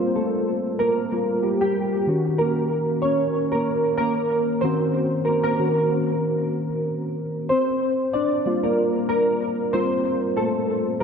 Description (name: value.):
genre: R&B.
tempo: 94 BPM.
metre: 4/4.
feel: swing 56% on 16ths.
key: unclear.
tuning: A4 = 440 Hz.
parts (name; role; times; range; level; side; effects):
bright reed electric piano; solo; 0.0-11.0 s; Eb3 to D5; -20 LUFS; equal; ensemble chorus, diffuse ambient delay.
room: wet plate reverb, RT60 2.5 s.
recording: dreamy mix soaked in reverb.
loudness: -20 LUFS.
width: side -6 dB against mid.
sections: 0.0-11.0 A section.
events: reed electric piano solo 0.0-11.0.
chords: 0.0 Gm11; 2.1 Ebm7; 7.5 Gm11.